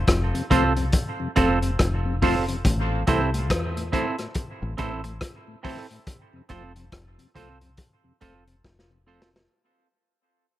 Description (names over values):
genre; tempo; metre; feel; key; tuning
dub reggae; 70 BPM; 4/4; swing 60% on 16ths; unclear; A4 = 441 Hz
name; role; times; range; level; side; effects
deep dub fingered electric bass; bass; 0.0-9.5 s; F1 to E2; -26 LUFS; left 1 dB; none
crunchy breakbeat drum kit; drums; 0.1-9.6 s; hi-hat, kick drum, rim click, snare drum; -25 LUFS; left 1 dB; none
mellow tonewheel organ; accompaniment; 0.3-9.4 s; F2 to C4; -31 LUFS; left 4 dB; chorus vibrato, slow rotary speaker
semi-hollow electric guitar; accompaniment; 0.5-9.3 s; C4 to C5; -26 LUFS; right 4 dB; dub echo
room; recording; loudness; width
light reverb, small room reverb; none; -21 LUFS; side -14 dB against mid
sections
0.0-9.5 A section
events
fade-out 0.0-9.5; drum fill 8.6-9.5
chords
0.0 F; 2.6 Am; 6.1 F